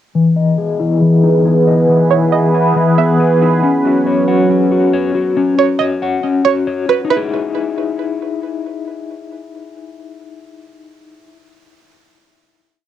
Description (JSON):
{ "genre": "hip hop, atmospheric cloud-rap", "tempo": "138 BPM", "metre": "4/4", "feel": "half-time", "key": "E major", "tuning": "A4 = 440 Hz", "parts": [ { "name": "sweeping resonant pad", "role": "sustained chords", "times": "0.1-5.3 s", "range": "E3 to C#5", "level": "-14 LUFS", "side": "right 2 dB", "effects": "chorus, phaser, low-pass filter, cassette tape" }, { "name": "mellow electric guitar", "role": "arpeggios", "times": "0.2-11.4 s", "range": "E3 to G#5", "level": "-15 LUFS", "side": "left 4 dB", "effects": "tremolo, low-pass filter, cassette tape, tape echo" }, { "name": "string-like resonator pluck", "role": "melody", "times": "2.1-8.4 s", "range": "B4 to E5", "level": "-17 LUFS", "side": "right 9 dB", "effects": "chorus, low-pass filter, cassette tape, tape echo" } ], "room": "wet studio ambience, RT60 0.5 s", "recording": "home recording on cassette", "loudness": "-11 LUFS", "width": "side -11 dB against mid", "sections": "0.1-7.1 breakdown; 7.1-10.6 final chord", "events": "filter sweep 0.1-7.1", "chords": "0.1 Emaj7; 3.6 Bsus2; 7.1 Emaj7" }